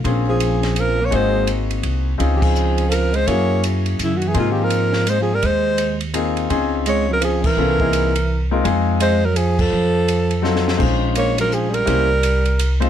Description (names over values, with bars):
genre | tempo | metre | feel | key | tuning
jazz, small-group swing and bop | 168 BPM | 3/4 | swing 63% on 8ths | Ab major, Db major from 6.5 s | A4 = 440 Hz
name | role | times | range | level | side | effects
warm concert grand piano | accompaniment | 0.0-12.9 s | Gb3 to C5 | -22 LUFS | left 6 dB | none
upright bass | bass | 0.0-12.9 s | Ab1 to Ab2 | -20 LUFS | equal | none
compact cocktail drum kit | drums | 0.0-12.9 s | crash cymbal, hi-hat, kick drum, ride cymbal, snare drum | -26 LUFS | right 1 dB | none
breathy alto saxophone | melody | 0.3-12.8 s | Fb4 to Db5 | -20 LUFS | left 1 dB | none
breathy tenor saxophone | second line | 0.3-12.8 s | C3 to Bb3 | -23 LUFS | right 7 dB | none
room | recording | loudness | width
little or no reverb | close, detailed microphones | -16 LUFS | side -10 dB against mid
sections
0.0-6.5 A section; 6.5-12.9 B section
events
band accent 2.4, 7.4, 9.5; drum fill 10.4-10.8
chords
0.0 Bbm9; 1.1 Ab9; 2.2 Dbmaj9; 3.3 Gb9; 4.3 Ab69; 6.5 Dbmaj7; 7.6 C7alt; 8.6 Fm7; 9.7 F7b9; 10.8 Bbm11; 11.9 C7b9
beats
| 0.04 0.40 0.76 | 1.12 1.48 1.84 | 2.20 2.56 2.91 | 3.27 3.63 3.99 | 4.35 4.71 5.07 | 5.42 5.78 6.14 | 6.50 6.86 7.21 | 7.57 7.93 8.29 | 8.65 9.01 9.36 | 9.72 10.08 10.44 | 10.80 11.15 11.51 | 11.87 12.23 12.59